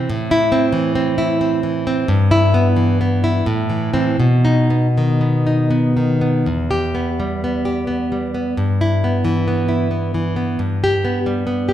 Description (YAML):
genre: romantic piece for solo classical guitar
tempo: 76-93 BPM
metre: 3/4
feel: rubato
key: E minor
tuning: A4 = 440 Hz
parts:
  - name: nylon-string guitar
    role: solo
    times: 0.0-11.7 s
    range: E2 to G4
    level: -15 LUFS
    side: equal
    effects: none
room: wet recital hall reverb, RT60 1.6 s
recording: recorded in a church or concert hall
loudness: -15 LUFS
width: side -11 dB against mid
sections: 0.0-6.5 A section; 6.5-11.7 A section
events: none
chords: 0.1 Am; 2.1 Em/G; 3.5 Am; 4.2 B; 6.5 Em; 8.6 Em/G; 10.6 G